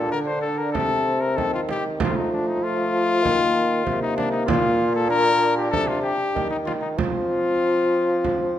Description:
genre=classical, renaissance-style consort dance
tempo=96 BPM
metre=4/4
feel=straight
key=Bb major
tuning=A4 = 441 Hz
part: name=mellow cornet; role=melody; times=0.0-8.6 s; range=D4 to C5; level=-23 LUFS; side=left 4 dB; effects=none
part: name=warm trombone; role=accompaniment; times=0.0-8.6 s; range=A3 to D4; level=-28 LUFS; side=left 1 dB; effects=none
part: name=mellow bassoon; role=bass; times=0.0-8.6 s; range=Bb2 to F3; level=-24 LUFS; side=right 1 dB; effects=none
part: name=frame drum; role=percussion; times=0.7-8.5 s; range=none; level=-29 LUFS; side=right 5 dB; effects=none
room=wet recital hall reverb, RT60 1.6 s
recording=dark, warm production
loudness=-19 LUFS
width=side -11 dB against mid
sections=0.0-8.6 A section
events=none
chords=0.0 Bb; 0.7 Cm; 2.0 F; 3.2 Eb5; 4.5 Bb; 5.7 Cm; 7.0 F5

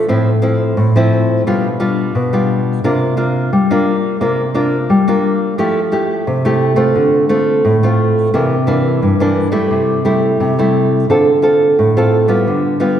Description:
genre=samba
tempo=87 BPM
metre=4/4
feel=straight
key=F major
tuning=A4 = 439 Hz
part: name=nylon-string guitar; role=solo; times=0.0-13.0 s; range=G2 to A4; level=-12 LUFS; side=equal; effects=none
room=wet scoring stage reverb, RT60 1.8 s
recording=recorded in a church or concert hall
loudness=-12 LUFS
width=side -9 dB against mid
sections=0.0-5.6 A section; 5.6-13.0 B section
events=none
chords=0.1 Fmaj7/A; 1.5 G7/B; 2.8 C9sus4; 5.6 Fmaj9; 7.0 Dm7; 8.3 C9; 9.7 Am7/C; 11.1 Dm7; 12.5 G7/D

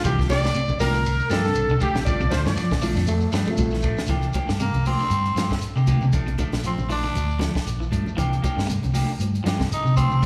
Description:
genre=afrobeat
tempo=118 BPM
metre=4/4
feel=swing 55% on 16ths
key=C mixolydian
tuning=A4 = 442 Hz
part: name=breathy alto saxophone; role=melody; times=0.0-2.9 s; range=G4 to D5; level=-29 LUFS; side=equal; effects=none
part: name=bright trumpet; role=second line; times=0.0-2.9 s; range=G4 to D5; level=-32 LUFS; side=equal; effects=slapback echo
part: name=mellow tine electric piano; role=accompaniment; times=0.0-3.7 s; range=D3 to F4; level=-33 LUFS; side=equal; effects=slapback echo
part: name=electric guitar at the edge of break-up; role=arpeggios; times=0.0-10.1 s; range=C3 to F3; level=-33 LUFS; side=equal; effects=none
part: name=clean electric guitar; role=stabs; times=0.0-10.3 s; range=F3 to G4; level=-34 LUFS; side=equal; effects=none
part: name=hollow-body short-scale fingered electric bass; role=bass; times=0.0-10.3 s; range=A1 to C3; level=-26 LUFS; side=equal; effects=none
part: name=compact cocktail drum kit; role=drums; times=0.0-10.3 s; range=hi-hat, kick drum, ride cymbal, snare drum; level=-30 LUFS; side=equal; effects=none
part: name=shekere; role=percussion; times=0.0-10.3 s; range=none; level=-38 LUFS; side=equal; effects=none
part: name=congas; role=percussion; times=0.1-10.3 s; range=none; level=-33 LUFS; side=equal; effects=none
part: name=growling bass trombone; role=second line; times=3.1-4.1 s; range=G3 to A3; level=-32 LUFS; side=equal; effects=none
part: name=breathy tenor saxophone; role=melody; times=4.6-10.3 s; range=Bb3 to Eb4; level=-29 LUFS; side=equal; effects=none
room=light reverb, studio ambience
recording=live gig heard through the venue's PA, club reverb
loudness=-23 LUFS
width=mono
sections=0.0-4.1 A section; 4.1-10.3 B section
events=drum fill 3.3-4.1; tenor saxophone solo 4.1-10.3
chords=0.0 C9sus4; 2.1 Bbmaj7; 4.1 C9sus4; 6.1 Bbmaj7; 8.2 C9sus4

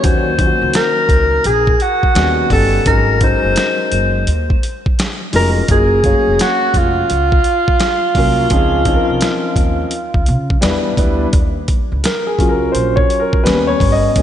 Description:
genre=hip hop, jazz-hop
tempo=85 BPM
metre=4/4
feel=swing 63% on 16ths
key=unclear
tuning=A4 = 439 Hz
part: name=breathy alto saxophone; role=melody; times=0.0-10.6 s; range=F4 to C5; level=-15 LUFS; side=equal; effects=analog delay
part: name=dark baby grand piano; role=accompaniment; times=0.0-14.2 s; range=Eb3 to F5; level=-18 LUFS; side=left 2 dB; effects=slapback echo
part: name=upright bass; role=bass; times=0.0-14.2 s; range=F1 to Db3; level=-18 LUFS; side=equal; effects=none
part: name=boom bap sampler-style drum kit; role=drums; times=0.0-14.2 s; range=hi-hat, kick drum, snare drum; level=-17 LUFS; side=equal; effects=none
room=moderate lush hall reverb, RT60 2.8 s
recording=big arena sound, nothing above 10.8 kHz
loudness=-12 LUFS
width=side -10 dB against mid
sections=0.0-11.3 A section; 11.3-14.2 B section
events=grand piano solo 11.3-14.2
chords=0.0 Ebm7; 2.2 Eb7alt; 2.9 Ab7sus4; 5.7 Gbmaj7; 8.5 Dbmaj9; 10.6 Em7; 11.3 Ebm7; 13.4 Ebaug7

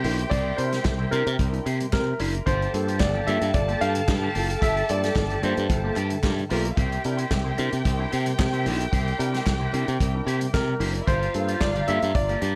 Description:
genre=disco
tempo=112 BPM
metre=4/4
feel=straight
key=G dorian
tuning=A4 = 436 Hz
part: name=dark baby grand piano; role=melody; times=0.0-5.9, 10.5-12.6 s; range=Bb4 to F5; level=-30 LUFS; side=equal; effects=none
part: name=dark studio violin section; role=second line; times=0.0-12.6 s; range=Bb3 to A5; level=-35 LUFS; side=equal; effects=none
part: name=electric guitar with an envelope filter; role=accompaniment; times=0.0-12.6 s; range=Bb3 to D5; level=-36 LUFS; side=equal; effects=none
part: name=overdriven tine electric piano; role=accompaniment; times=0.0-12.4 s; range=G2 to Bb4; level=-36 LUFS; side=equal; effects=phaser
part: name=mellow hollow flute section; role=sustained chords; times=0.0-12.6 s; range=G4 to D6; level=-39 LUFS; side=equal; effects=none
part: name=modern bright fingered electric bass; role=bass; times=0.0-12.6 s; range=F#1 to C3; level=-28 LUFS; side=equal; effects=none
part: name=warm soul drum kit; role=drums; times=0.0-12.6 s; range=hi-hat, kick drum, snare drum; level=-30 LUFS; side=equal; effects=none
part: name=group handclap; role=percussion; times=0.8-11.7 s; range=none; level=-40 LUFS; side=equal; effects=none
part: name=warm horn section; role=stabs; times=6.2-6.7 s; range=F4 to Bb4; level=-36 LUFS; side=equal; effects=none
room=light reverb, small room ambience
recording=none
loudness=-24 LUFS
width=mono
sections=0.0-12.6 A section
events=band accent 4.6-6.8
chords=0.0 C7; 2.5 Gm7; 6.8 C7; 11.1 Gm7

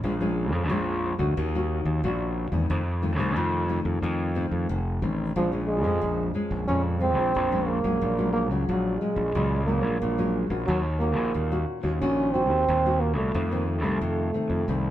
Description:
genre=samba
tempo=90 BPM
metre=4/4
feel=straight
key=Bb minor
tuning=A4 = 440 Hz
part: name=nylon-string guitar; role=accompaniment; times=0.0-14.9 s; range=F2 to Gb4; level=-29 LUFS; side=left 2 dB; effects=none
part: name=growling fingered electric bass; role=bass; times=0.0-14.9 s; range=F1 to F2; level=-27 LUFS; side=equal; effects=overdrive
part: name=mellow trombone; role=melody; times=5.4-14.9 s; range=F3 to Db4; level=-26 LUFS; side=right 2 dB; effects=none
room=moderate studio reverb, RT60 0.8 s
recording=heard from further back in the room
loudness=-23 LUFS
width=side -12 dB against mid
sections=0.0-5.4 A section; 5.4-14.9 B section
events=none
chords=0.0 Bbm7; 1.4 Ebm7; 2.7 F7; 5.4 Bbm7; 8.0 Gbadd9/Bb; 10.7 Ebm7; 13.3 F7

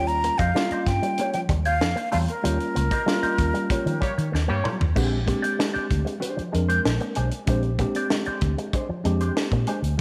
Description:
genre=funk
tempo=95 BPM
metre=4/4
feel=straight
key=Bb mixolydian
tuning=A4 = 440 Hz
part: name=breathy jazz flute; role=melody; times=0.0-4.3 s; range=Bb4 to Bb5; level=-29 LUFS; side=equal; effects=none
part: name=mellow electric guitar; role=accompaniment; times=0.0-9.9 s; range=Ab3 to Eb5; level=-33 LUFS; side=equal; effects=wah
part: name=electric guitar with an envelope filter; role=riff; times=0.0-9.8 s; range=F3 to Bb3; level=-36 LUFS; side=equal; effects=spring reverb
part: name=mellow tine electric piano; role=stabs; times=0.0-10.0 s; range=G3 to Bb4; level=-31 LUFS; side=equal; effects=none
part: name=vintage muted fingered electric bass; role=bass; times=0.0-10.0 s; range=Bb1 to Eb3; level=-27 LUFS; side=equal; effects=none
part: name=tight funk drum kit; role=drums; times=0.1-10.0 s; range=crash cymbal, hi-hat, kick drum, snare drum, toms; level=-30 LUFS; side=equal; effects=none
part: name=clear horn section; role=second line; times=4.0-4.7 s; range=Bb3 to Db5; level=-34 LUFS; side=equal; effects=none
room=moderate echo chamber reverb, RT60 1.7 s, studio reverb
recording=none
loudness=-24 LUFS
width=mono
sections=0.0-5.0 A section; 5.0-10.0 B section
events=band accent 2.4-5.0; drum fill 4.3-5.0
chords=0.0 Eb9; 5.0 Bb13

